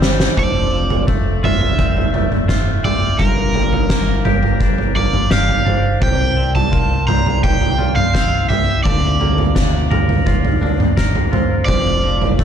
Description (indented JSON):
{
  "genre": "post-rock",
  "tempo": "85 BPM",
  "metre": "4/4",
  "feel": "straight",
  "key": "unclear",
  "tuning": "A4 = 440 Hz",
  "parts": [
    { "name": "pedal steel guitar", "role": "sustained chords", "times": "0.0-12.4 s", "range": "C3 to A5", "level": "-29 LUFS", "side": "left 3 dB", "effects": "none" },
    { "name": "twangy electric guitar", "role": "arpeggios", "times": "0.0-12.4 s", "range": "F2 to C5", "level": "-25 LUFS", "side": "left 4 dB", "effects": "tape echo" },
    { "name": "vibraphone with medium hard mallets", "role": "arpeggios", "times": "0.0-12.4 s", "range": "A4 to E6", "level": "-28 LUFS", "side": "right 4 dB", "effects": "tape echo" },
    { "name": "growling fingered electric bass", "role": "bass", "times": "0.0-12.4 s", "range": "F1 to D2", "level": "-20 LUFS", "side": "equal", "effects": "overdrive" },
    { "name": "oversized low-tuned drum kit", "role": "drums", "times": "0.0-12.4 s", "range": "kick drum, snare drum, toms", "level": "-16 LUFS", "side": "right 1 dB", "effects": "none" },
    { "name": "cranked stack guitar", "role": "melody", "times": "0.4-12.3 s", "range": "Bb4 to Bb5", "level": "-21 LUFS", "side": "right 2 dB", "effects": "overdrive, tape echo" }
  ],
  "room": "small room ambience",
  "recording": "dark, warm production",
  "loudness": "-13 LUFS",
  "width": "side -8 dB against mid",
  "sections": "0.4-12.4 A section",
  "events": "drum fill 0.0-0.4",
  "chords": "0.4 F6; 3.2 Gm7; 6.0 C9sus4; 8.9 Bbmaj7/D; 11.7 F6"
}